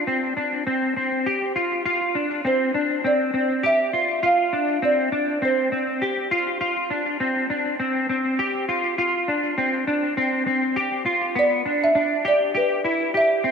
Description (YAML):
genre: dream pop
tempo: 101 BPM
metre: 4/4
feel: straight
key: unclear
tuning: A4 = 440 Hz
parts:
  - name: semi-hollow electric guitar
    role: arpeggios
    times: 0.0-13.5 s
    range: B3 to G4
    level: -21 LUFS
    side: left 1 dB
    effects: ensemble chorus, ping-pong delay
  - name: folk marimba with soft mallets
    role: melody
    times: 2.5-6.3, 11.4-13.5 s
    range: B4 to F5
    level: -21 LUFS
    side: right 1 dB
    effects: ping-pong delay
room: wet plate reverb, RT60 3.5 s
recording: dreamy mix soaked in reverb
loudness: -20 LUFS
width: side -6 dB against mid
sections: 0.0-11.4 A section; 11.4-13.5 B section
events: none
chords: 0.0 G7sus4; 9.0 Csus24; 10.2 F5; 11.4 Em7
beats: 0.07 0.67 1.26 | 1.85 2.45 3.04 3.64 | 4.23 4.82 5.42 6.01 | 6.61 7.20 7.79 8.39 | 8.98 9.58 10.17 10.77 | 11.36 11.95 12.55 13.14